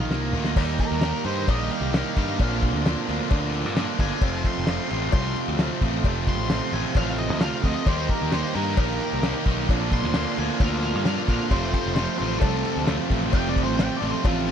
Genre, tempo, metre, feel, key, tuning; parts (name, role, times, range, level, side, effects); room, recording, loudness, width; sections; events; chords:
classic rock; 132 BPM; 4/4; straight; F mixolydian; A4 = 440 Hz
octave-fuzz lead guitar; melody; 0.0-14.5 s; F4 to C6; -31 LUFS; left 1 dB; distortion, slapback echo
bright tonewheel organ; sustained chords; 0.0-14.5 s; A3 to Bb4; -37 LUFS; equal
cranked stack guitar; riff; 0.0-14.5 s; F2 to G4; -29 LUFS; right 14 dB; overdrive
distorted electric guitar; riff; 0.0-14.5 s; F2 to G4; -30 LUFS; left 15 dB; overdrive
fuzz picked electric bass; bass; 0.0-14.5 s; F1 to G2; -28 LUFS; equal; overdrive
cloth-damped thuddy drum kit; drums; 0.1-14.5 s; crash cymbal, kick drum, ride cymbal, snare drum, toms; -24 LUFS; equal
cowbell; percussion; 0.6-14.4 s; -35 LUFS; left 22 dB
thick fuzz guitar; riff; 7.9-14.5 s; F2 to G4; -31 LUFS; equal; distortion
little or no reverb; dry, close 1970s-style studio recording; -21 LUFS; side -8 dB against mid
0.6-14.5 A section
drum fill 0.0-0.6; lead electric guitar solo 0.6-14.5
0.0 Ebsus2; 0.6 Eb; 2.4 Bbadd9; 4.2 F; 7.9 Eb; 9.7 Bbadd9; 11.5 F